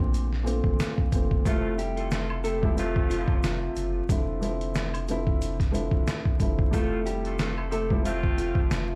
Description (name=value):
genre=hip hop, boom-bap hip-hop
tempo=91 BPM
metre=4/4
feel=swing 56% on 16ths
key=F major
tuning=A4 = 440 Hz
part: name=dark upright piano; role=accompaniment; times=0.0-9.0 s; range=Bb2 to E5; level=-34 LUFS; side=equal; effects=high-pass filter, low-pass filter, plate reverb
part: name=sub bass with octave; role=bass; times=0.0-9.0 s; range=D1 to Bb1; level=-33 LUFS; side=equal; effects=none
part: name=trip hop sampler-style drum kit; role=drums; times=0.1-8.9 s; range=hi-hat, kick drum, snare drum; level=-28 LUFS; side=equal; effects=none
part: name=egg shaker and woodblock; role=percussion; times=0.1-8.9 s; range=none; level=-46 LUFS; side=equal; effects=none
part: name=nylon-string guitar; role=melody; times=1.5-9.0 s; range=F3 to A4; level=-34 LUFS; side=equal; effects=high-pass filter, low-pass filter, tape echo
part: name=warm saxophone section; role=stabs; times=1.5-8.7 s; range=A3 to A4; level=-37 LUFS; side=equal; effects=high-pass filter, low-pass filter, tape echo
room=light reverb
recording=played on a big sound system in a bare room, large studio reverb, vinyl crackle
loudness=-26 LUFS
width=mono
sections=0.0-9.0 A section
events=none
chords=0.0 Bbmaj9; 1.5 Fmaj7; 4.1 Dm9/F; 6.7 Fmaj7